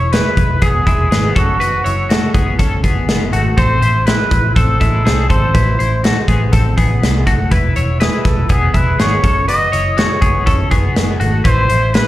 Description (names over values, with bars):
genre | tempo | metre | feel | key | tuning
jangly indie pop | 122 BPM | 4/4 | straight | unclear | A4 = 440 Hz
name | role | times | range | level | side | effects
warm trumpet | melody | 0.0-12.1 s | F#4 to D#5 | -18 LUFS | right 1 dB | slapback echo
twelve-string electric guitar | arpeggios | 0.0-12.1 s | G#3 to C#5 | -20 LUFS | left 2 dB | harmonic tremolo, slapback echo
vintage muted fingered electric bass | bass | 0.0-12.0 s | E1 to C2 | -16 LUFS | equal | none
big rock drum kit | drums | 0.1-12.1 s | hi-hat, kick drum, snare drum | -15 LUFS | equal | none
room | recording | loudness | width
small room ambience | live gig heard through the venue's PA, club reverb | -11 LUFS | side -15 dB against mid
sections
0.0-12.1 A section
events
none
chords
0.0 E; 1.4 F#m; 3.6 Am; 7.5 E; 9.2 F#m; 11.4 Am